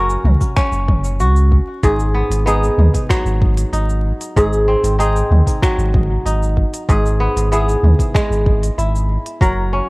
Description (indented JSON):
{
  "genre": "folktronica",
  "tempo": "95 BPM",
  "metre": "4/4",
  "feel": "straight",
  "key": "G# minor",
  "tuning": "A4 = 440 Hz",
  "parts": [
    { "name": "kora", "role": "arpeggios", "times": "0.0-9.9 s", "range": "G#2 to A#4", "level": "-18 LUFS", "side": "equal", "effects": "vintage 12-bit sampler grit, cassette tape, analog delay" },
    { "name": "warm sub bass", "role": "bass", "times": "0.0-9.8 s", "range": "F#1 to D#2", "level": "-15 LUFS", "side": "equal", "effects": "tube saturation" },
    { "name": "organic electronic drum kit", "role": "drums", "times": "0.1-9.5 s", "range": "cabasa, finger snaps, hi-hat, toms", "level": "-24 LUFS", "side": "equal", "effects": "overdrive, cassette tape" },
    { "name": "electronic kick drum", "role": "drums", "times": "0.4-9.5 s", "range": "none", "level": "-16 LUFS", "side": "equal", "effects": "overdrive, cassette tape" }
  ],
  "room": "digital ambience",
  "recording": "home recording on cassette, vinyl crackle",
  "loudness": "-13 LUFS",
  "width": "side -25 dB against mid",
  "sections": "0.0-9.9 A section",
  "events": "none",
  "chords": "0.0 F#; 1.8 G#m7; 4.4 G#7; 6.9 Emaj7/G#"
}